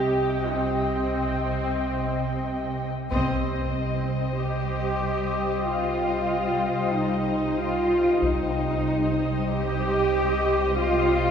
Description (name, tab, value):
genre	cinematic, suspense film score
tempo	free time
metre	none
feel	none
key	C minor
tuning	A4 = 442 Hz
part	muted symphonic violin section	second line	0.0-11.3 s	C5 to G5	-33 LUFS	left 3 dB	none
part	muted symphonic viola section	accompaniment	0.0-11.3 s	G3 to G4	-32 LUFS	equal	none
part	deep dark ambient pad	sustained chords	0.0-11.3 s	G4 to G5	-33 LUFS	left 1 dB	chorus, built-in reverb
part	muted symphonic cello section	bass	0.0-11.3 s	C3 to G4	-26 LUFS	right 1 dB	none
part	muted symphonic double bass section	bass	0.0-11.3 s	C2	-30 LUFS	right 1 dB	none
part	muted symphonic violin section	melody	3.1-11.3 s	Eb5	-34 LUFS	left 5 dB	none
part	taiko ensemble	drums	3.1-4.4, 8.2-9.5 s	none	-34 LUFS	left 2 dB	none
room	wet church reverb, RT60 3.7 s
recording	heard from further back in the room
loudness	-22 LUFS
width	side -7 dB against mid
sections	0.0-3.1 A section; 3.1-11.3 A section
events	band accent 3.1-3.8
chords	0.0 Cm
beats	free time